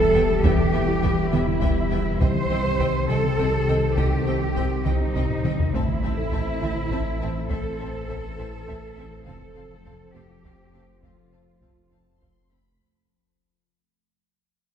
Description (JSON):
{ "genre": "cinematic, hybrid orchestral and electronic film score", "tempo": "68 BPM (dotted quarters)", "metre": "6/8", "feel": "straight", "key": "unclear", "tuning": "A4 = 440 Hz", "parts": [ { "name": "dark French horn section", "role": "sustained chords", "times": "0.0-12.5 s", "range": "Eb3 to C5", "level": "-35 LUFS", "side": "left 5 dB", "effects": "none" }, { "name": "hollow soft pad", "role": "sustained chords", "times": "0.0-12.8 s", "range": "Eb3 to E5", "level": "-32 LUFS", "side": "equal", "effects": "chorus" }, { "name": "clear symphonic cello section", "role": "bass", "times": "0.0-11.9 s", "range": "Eb4 to C5", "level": "-26 LUFS", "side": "right 2 dB", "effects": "none" }, { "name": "detuned saw bass", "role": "bass", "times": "0.0-12.8 s", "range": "E1 to C2", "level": "-29 LUFS", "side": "equal", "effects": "none" }, { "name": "rich studio violin section", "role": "melody", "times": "0.1-12.8 s", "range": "G5 to C6", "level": "-42 LUFS", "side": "left 5 dB", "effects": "none" }, { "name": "rich symphonic violin section", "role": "second line", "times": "0.1-12.6 s", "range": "Eb5 to F5", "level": "-41 LUFS", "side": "equal", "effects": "none" }, { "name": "rich symphonic viola section", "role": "accompaniment", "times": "0.1-12.6 s", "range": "B3 to C4", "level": "-35 LUFS", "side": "right 1 dB", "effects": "none" }, { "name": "harp-like synth pluck", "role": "arpeggios", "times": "0.1-12.6 s", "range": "C3 to A4", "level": "-29 LUFS", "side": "left 3 dB", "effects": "chorus" }, { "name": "clear symphonic double bass section", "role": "bass", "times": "0.1-12.6 s", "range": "F1 to E2", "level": "-31 LUFS", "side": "right 2 dB", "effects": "none" }, { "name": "taiko ensemble", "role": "drums", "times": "0.4-12.8 s", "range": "none", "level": "-27 LUFS", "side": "equal", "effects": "none" } ], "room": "wet church reverb, RT60 3.4 s", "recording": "recorded in a church or concert hall", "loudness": "-20 LUFS", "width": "side -8 dB against mid", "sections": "0.0-12.8 A section", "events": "fade-out 0.0-12.8; drum fill 5.3-5.7", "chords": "0.0 Em; 2.2 Cm; 5.7 Am; 9.3 F", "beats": "| 0.44 1.32 | 2.20 3.08 | 3.97 4.85 | 5.73 6.62 | 7.50 8.38 | 9.26 10.14 | 11.03 11.91" }